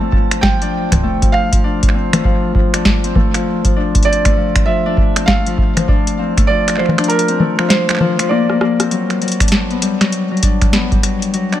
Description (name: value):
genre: IDM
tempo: 99 BPM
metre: 4/4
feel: swing 62% on 16ths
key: unclear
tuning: A4 = 440 Hz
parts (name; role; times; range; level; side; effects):
- felt-muted upright piano; melody; 0.0-8.8 s; Bb4 to A5; -20 LUFS; right 4 dB; ping-pong delay
- Celtic harp; arpeggios; 0.0-11.6 s; F3 to D4; -17 LUFS; left 3 dB; tape echo
- electronic kick drum; drums; 0.1-11.0 s; none; -15 LUFS; equal; none
- booming analog drum machine; drums; 0.3-11.6 s; congas, finger snaps, hi-hat, rim click, snare drum; -18 LUFS; equal; none
room: light reverb, small room reverb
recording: none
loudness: -12 LUFS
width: side -12 dB against mid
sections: 0.0-8.9 A section; 8.9-11.6 B section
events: kick drops out 6.5-8.9; drum fill 8.3-8.9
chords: 0.0 Bbmaj9 (rootless); 8.9 Gmaj7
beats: 0.43 1.03 | 1.64 2.25 2.85 3.46 | 4.07 4.67 5.28 5.88 | 6.49 7.09 7.70 8.31 | 8.91 9.52 10.12 10.73 | 11.34